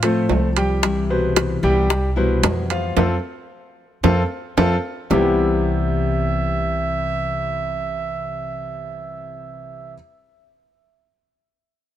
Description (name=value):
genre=latin, Cuban son and guajira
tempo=112 BPM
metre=4/4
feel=straight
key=C major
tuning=A4 = 442 Hz
part: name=nylon-string guitar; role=accompaniment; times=0.0-10.0 s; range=C3 to F4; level=-25 LUFS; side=left 4 dB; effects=none
part: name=clear concert grand piano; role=arpeggios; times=0.0-9.9 s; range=B2 to G5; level=-22 LUFS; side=left 1 dB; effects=none
part: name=upright bass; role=bass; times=0.0-9.9 s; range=C2 to A2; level=-23 LUFS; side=equal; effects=none
part: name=timbales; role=percussion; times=0.0-5.2 s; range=none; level=-24 LUFS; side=right 9 dB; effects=none
part: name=bongos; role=percussion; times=0.8-5.2 s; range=none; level=-22 LUFS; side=left 8 dB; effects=none
part: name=warm trumpet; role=second line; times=5.1-9.9 s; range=E5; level=-26 LUFS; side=right 5 dB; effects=none
room=light reverb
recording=none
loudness=-18 LUFS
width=side -11 dB against mid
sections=0.0-5.1 A section; 5.1-9.4 B section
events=band accent 3.0-5.1; drum fill 4.3-5.1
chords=0.0 F; 0.8 Cmaj7; 3.0 F; 5.1 Cmaj7